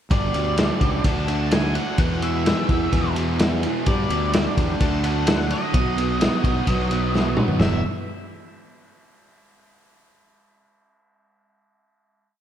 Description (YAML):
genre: classic rock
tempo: 128 BPM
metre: 4/4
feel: straight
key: unclear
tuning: A4 = 441 Hz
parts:
  - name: octave-fuzz lead guitar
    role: melody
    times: 0.1-7.8 s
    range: D5 to A5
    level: -29 LUFS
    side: left 1 dB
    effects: distortion, slapback echo
  - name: picked old ladder-braced acoustic guitar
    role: accompaniment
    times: 0.1-7.8 s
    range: E2 to G#4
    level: -32 LUFS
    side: right 7 dB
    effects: slapback echo
  - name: cranked stack guitar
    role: riff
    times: 0.1-7.8 s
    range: E2 to D4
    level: -30 LUFS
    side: left 10 dB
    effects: overdrive, slapback echo
  - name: crunchy overdriven guitar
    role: riff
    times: 0.1-7.8 s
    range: E2 to G#4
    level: -28 LUFS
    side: right 10 dB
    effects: slapback echo
  - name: fuzz fingered electric bass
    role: bass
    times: 0.1-7.8 s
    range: E1 to G2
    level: -25 LUFS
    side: equal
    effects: overdrive
  - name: vintage drum kit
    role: drums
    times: 0.1-7.7 s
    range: kick drum, ride cymbal, snare drum, toms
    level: -22 LUFS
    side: equal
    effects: none
room: light reverb, studio ambience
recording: none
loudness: -19 LUFS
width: side -10 dB against mid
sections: 0.1-7.6 pre-chorus; 7.6-9.4 final chord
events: drum fill 7.1-7.6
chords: 0.1 G; 1.1 D; 2.0 E; 3.9 G; 4.8 D; 5.7 B; 7.6 E